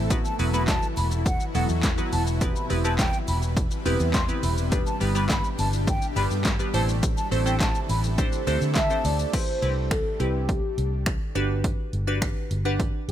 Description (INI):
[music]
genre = dance-pop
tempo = 104 BPM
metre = 4/4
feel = straight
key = unclear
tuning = A4 = 439 Hz
[part]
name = glassy wavetable pluck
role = accompaniment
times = 0.0-13.1 s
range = F#3 to F#5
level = -30 LUFS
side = equal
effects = chorus, sidechain pumping
[part]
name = shimmering ambient pad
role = sustained chords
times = 0.0-9.3 s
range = B2 to B4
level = -33 LUFS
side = equal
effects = chorus, built-in reverb, sidechain pumping
[part]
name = vintage muted fingered electric bass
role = bass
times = 0.0-13.1 s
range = E1 to D3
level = -26 LUFS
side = equal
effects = sidechain pumping
[part]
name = punchy analog drum machine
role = drums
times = 0.1-13.1 s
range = crash cymbal, finger snaps, handclaps, hi-hat, kick drum, shaker, snare drum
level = -26 LUFS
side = equal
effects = overdrive
[part]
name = breathy mellow concert flute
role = melody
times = 0.2-9.2 s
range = F#5 to C6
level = -32 LUFS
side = equal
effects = dub echo
[part]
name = warm velvety synth lead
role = melody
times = 8.8-13.1 s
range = G4 to E5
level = -29 LUFS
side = equal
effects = chorus
[sound]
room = little or no reverb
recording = none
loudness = -22 LUFS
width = side -11 dB against mid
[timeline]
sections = 0.0-9.3 A section; 9.3-13.1 B section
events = drop 0.0-9.3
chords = 0.1 Esus2; 2.4 Cmaj7/E; 4.7 G; 6.7 Am; 8.2 D7sus4; 9.3 Cmaj7; 11.4 Gmaj7